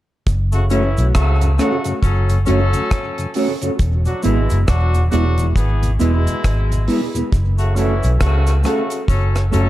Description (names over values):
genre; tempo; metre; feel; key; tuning
dub reggae; 68 BPM; 4/4; swing 60% on 16ths; F# minor; A4 = 438 Hz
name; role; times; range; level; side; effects
vintage muted fingered electric bass; bass; 0.3-9.7 s; E1 to C#2; -16 LUFS; equal; none
deep reggae drum kit; drums; 0.3-9.7 s; hi-hat, kick drum, rim click; -22 LUFS; equal; none
cabasa; percussion; 0.3-9.7 s; none; -38 LUFS; right 3 dB; tape echo
clear horn section; second line; 0.5-9.7 s; B2 to A4; -24 LUFS; left 1 dB; tape echo
mellow tonewheel organ; accompaniment; 0.5-7.2 s; E2 to F#4; -24 LUFS; left 2 dB; slow rotary speaker, tape echo
mellow electric guitar; accompaniment; 0.7-9.7 s; A3 to C#5; -23 LUFS; right 3 dB; wide subtle chorus, tape echo
room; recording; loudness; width
light reverb, studio reverb; dark, warm production; -15 LUFS; side -15 dB against mid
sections
0.3-9.7 A section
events
none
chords
0.3 F#m; 3.8 E; 7.3 F#m